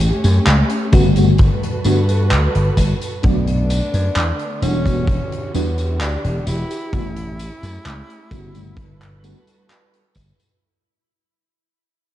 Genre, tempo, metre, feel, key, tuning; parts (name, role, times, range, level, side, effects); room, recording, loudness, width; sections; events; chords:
vaporwave; 65 BPM; 4/4; straight; G lydian; A4 = 440 Hz
dark symphonic string section; sustained chords; 0.0-10.6 s; D3 to B4; -26 LUFS; right 1 dB; vintage 12-bit sampler grit
vintage slap bass; bass; 0.0-10.3 s; E1 to G2; -17 LUFS; equal
big rock drum kit; drums; 0.0-10.6 s; handclaps, hi-hat, tambourine; -26 LUFS; equal; vintage 12-bit sampler grit
mellow FM electric piano; accompaniment; 0.9-9.4 s; C#3 to F#4; -22 LUFS; left 1 dB; tremolo, ensemble chorus, cassette tape, analog delay
kick drum; drums; 0.9-10.3 s; -19 LUFS; equal; vintage 12-bit sampler grit
breathy tenor saxophone; melody; 3.2-10.2 s; B3 to E4; -30 LUFS; equal; tape echo
little or no reverb; dark, warm production; -15 LUFS; side -13 dB against mid
0.0-10.6 A section
fade-out 0.8-10.6
0.0 A13; 1.4 Gmaj9; 3.2 Bm7; 4.6 Em9; 6.9 A13; 8.8 Gmaj9